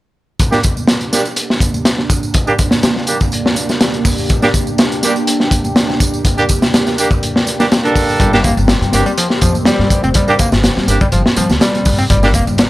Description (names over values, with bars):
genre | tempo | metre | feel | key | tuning
breakbeat, breaks | 123 BPM | 4/4 | swing 53% on 16ths | G minor | A4 = 440 Hz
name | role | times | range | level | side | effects
phased analog pad | sustained chords | 0.4-12.7 s | Bb3 to G4 | -22 LUFS | right 1 dB | phaser, chorus, vintage 12-bit sampler grit, sidechain pumping
crunchy breakbeat drum kit | drums | 0.4-12.7 s | hi-hat, kick drum, snare drum | -13 LUFS | equal | none
tambourine | drums | 0.4-12.7 s | none | -25 LUFS | right 3 dB | overdrive
bright horn section | stabs | 0.5-12.3 s | G3 to A4 | -17 LUFS | right 2 dB | vintage 12-bit sampler grit, low-pass filter, tape echo
congas | percussion | 0.8-12.6 s | none | -28 LUFS | right 2 dB | none
overdriven picked electric bass | riff | 8.2-12.4 s | F3 to C4 | -18 LUFS | equal | tape echo
upright bass | bass | 8.2-12.6 s | F1 to G2 | -16 LUFS | equal | none
room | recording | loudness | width
small room ambience | dry, gritty hardware recording | -11 LUFS | side -17 dB against mid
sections
0.4-12.7 A section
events
none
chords
0.4 Gm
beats
| 0.40 0.88 1.37 1.86 | 2.35 2.83 3.32 3.81 | 4.30 4.79 5.28 5.76 | 6.25 6.74 7.23 7.71 | 8.20 8.69 9.18 9.66 | 10.15 10.64 11.13 11.62 | 12.10 12.59